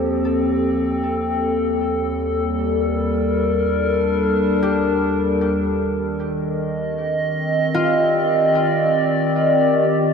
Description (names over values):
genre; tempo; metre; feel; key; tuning
ambient; free time; none; none; unclear; A4 = 440 Hz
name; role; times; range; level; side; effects
warbly tape-like pad; sustained chords; 0.0-10.1 s; Eb2 to Eb5; -17 LUFS; equal; chorus, built-in reverb
concert harp; arpeggios; 0.0-10.1 s; F4 to A4; -28 LUFS; left 4 dB; ping-pong delay
room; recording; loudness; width
wet cathedral reverb, RT60 5.6 s; none; -17 LUFS; side -6 dB against mid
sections
0.0-9.9 A section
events
none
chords
0.0 F9/Eb; 1.5 Gmadd9/Eb; 5.7 Cm9/Eb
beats
free time